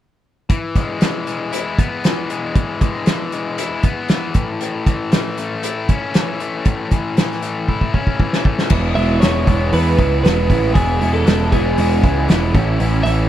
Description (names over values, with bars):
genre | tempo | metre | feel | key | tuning
indie rock | 117 BPM | 4/4 | straight | E major | A4 = 440 Hz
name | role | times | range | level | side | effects
distorted electric guitar | riff | 0.5-13.3 s | A2 to E4 | -22 LUFS | left 4 dB | overdrive
loose indie drum kit | drums | 0.5-13.2 s | crash cymbal, hi-hat, kick drum, snare drum | -17 LUFS | equal | none
raw garage guitar | riff | 8.7-13.3 s | A2 to E4 | -23 LUFS | right 6 dB | overdrive, analog chorus
growling picked electric bass | bass | 8.7-13.3 s | E1 to E2 | -18 LUFS | equal | overdrive
twelve-string electric guitar | melody | 9.0-13.1 s | G#4 to E5 | -20 LUFS | right 1 dB | slapback echo
room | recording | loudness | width
small room ambience | none | -15 LUFS | side -12 dB against mid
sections
0.5-8.7 A section; 8.7-13.3 B section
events
drum fill 7.7-8.7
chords
0.5 E; 4.3 A; 8.7 E; 12.5 A